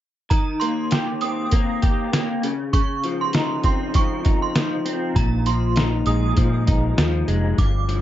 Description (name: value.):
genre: indie pop, bedroom pop.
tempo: 99 BPM.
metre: 4/4.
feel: swing 55% on 16ths.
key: Eb major.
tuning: A4 = 440 Hz.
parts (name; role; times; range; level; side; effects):
synth chime; second line; 0.3-7.9 s; Bb5 to Eb6; -28 LUFS; right 5 dB; ensemble chorus, wide subtle chorus, analog delay, plate reverb.
electric guitar through a small old amp; accompaniment; 0.3-8.0 s; G2 to G4; -24 LUFS; left 2 dB; ensemble chorus, warbly pitch drift, plate reverb.
lo-fi sampler-style drum kit; drums; 0.3-8.0 s; hi-hat, kick drum, snare drum; -21 LUFS; equal; none.
vintage muted fingered electric bass; bass; 5.2-8.0 s; F1 to Bb2; -21 LUFS; equal; none.
room: light reverb.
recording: dark, warm production, nothing above 7.8 kHz.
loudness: -18 LUFS.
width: side -12 dB against mid.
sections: 0.3-8.0 A section.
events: none.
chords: 0.3 Eb6; 2.4 Dbmaj9; 5.2 Bb7sus4.